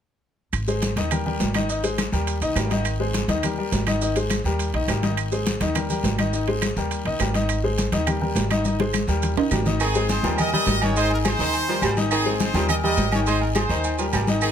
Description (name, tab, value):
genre	latin, salsa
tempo	207 BPM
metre	4/4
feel	straight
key	Ab major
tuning	A4 = 444 Hz
part	upright bass	bass	0.5-14.5 s	Ab1 to Eb2	-26 LUFS	equal	none
part	claves	percussion	0.5-14.5 s	none	-31 LUFS	right 10 dB	none
part	congas	percussion	0.5-14.5 s	none	-28 LUFS	left 2 dB	none
part	guiro	percussion	0.5-14.5 s	none	-36 LUFS	left 4 dB	none
part	maracas	percussion	0.5-14.5 s	none	-35 LUFS	right 8 dB	none
part	timbales and agogo bells	percussion	0.5-14.5 s	none	-29 LUFS	right 5 dB	none
part	bright upright piano	accompaniment	0.7-14.5 s	Eb3 to Eb5	-25 LUFS	left 3 dB	none
part	brilliant horn section	melody	9.8-14.5 s	C4 to Eb5	-25 LUFS	equal	none
part	warm baritone saxophone	second line	9.8-14.5 s	Eb3 to Ab3	-28 LUFS	right 6 dB	none
room	light reverb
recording	close, detailed microphones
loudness	-20 LUFS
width	side -9 dB against mid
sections	0.5-9.8 A section; 9.8-14.5 B section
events	drum fill 8.7-9.8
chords	0.5 Ab; 1.1 Eb; 1.7 Ab; 2.3 Eb; 2.9 Ab; 3.4 Eb; 4.0 Ab; 4.6 Eb; 5.2 Ab; 5.8 Eb; 6.3 Ab; 6.9 Eb; 7.5 Ab; 8.1 Eb; 8.7 Ab; 9.2 Eb; 9.8 Ab; 10.4 Eb; 11.0 Ab; 11.5 Eb; 12.1 Ab; 12.7 Eb; 13.3 Ab; 13.8 Eb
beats	| 0.53 0.82 1.11 1.40 | 1.69 1.98 2.27 2.56 | 2.85 3.15 3.44 3.73 | 4.01 4.30 4.59 4.88 | 5.17 5.46 5.75 6.04 | 6.33 6.62 6.91 7.20 | 7.49 7.78 8.07 8.36 | 8.65 8.94 9.23 9.52 | 9.80 10.09 10.38 10.67 | 10.96 11.25 11.54 11.82 | 12.11 12.40 12.69 12.98 | 13.27 13.55 13.84 14.13 | 14.42